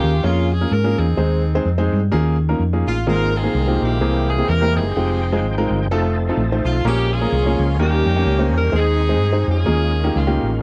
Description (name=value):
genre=uptempo gospel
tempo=127 BPM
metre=4/4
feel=swing 58% on 8ths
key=Ab major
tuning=A4 = 440 Hz
part: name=clear saxophone section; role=melody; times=0.0-10.6 s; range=Ab3 to Bb4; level=-25 LUFS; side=equal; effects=none
part: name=warm grand piano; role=accompaniment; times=0.0-10.5 s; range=Ab2 to Db5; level=-24 LUFS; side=equal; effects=none
part: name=hollow-body short-scale fingered electric bass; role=bass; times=0.0-10.6 s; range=F1 to Ab2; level=-21 LUFS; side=equal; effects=none
part: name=overdriven tonewheel organ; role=sustained chords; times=3.1-10.6 s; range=Eb3 to G5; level=-29 LUFS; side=equal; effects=slow rotary speaker, chorus vibrato
room=little or no reverb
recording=dry, close 1970s-style studio recording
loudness=-18 LUFS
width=mono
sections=0.0-10.6 A section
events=none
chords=0.0 Bbm7; 1.2 Ab/Eb; 2.1 Eb9sus4; 3.1 Ab69; 4.0 C7b13; 5.0 Fm9; 5.9 F7; 6.8 Bbm7; 7.8 Eb7; 8.7 Ab/Eb; 9.7 Eb9sus4